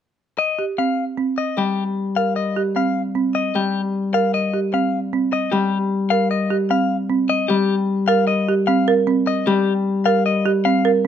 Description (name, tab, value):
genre	classical, minimalist pattern music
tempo	152 BPM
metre	5/4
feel	straight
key	Eb major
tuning	A4 = 439 Hz
part	clean electric guitar	melody	0.4-10.9 s	G4 to F5	-21 LUFS	left 6 dB	none
part	folk marimba with medium hard mallets	arpeggios	0.6-11.1 s	C4 to Bb4	-21 LUFS	right 6 dB	none
part	Celtic harp	accompaniment	1.6-11.1 s	G3	-21 LUFS	left 3 dB	none
room	light reverb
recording	close, detailed microphones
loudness	-17 LUFS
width	side -9 dB against mid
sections	0.4-11.1 A section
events	none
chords	0.4 Ebadd9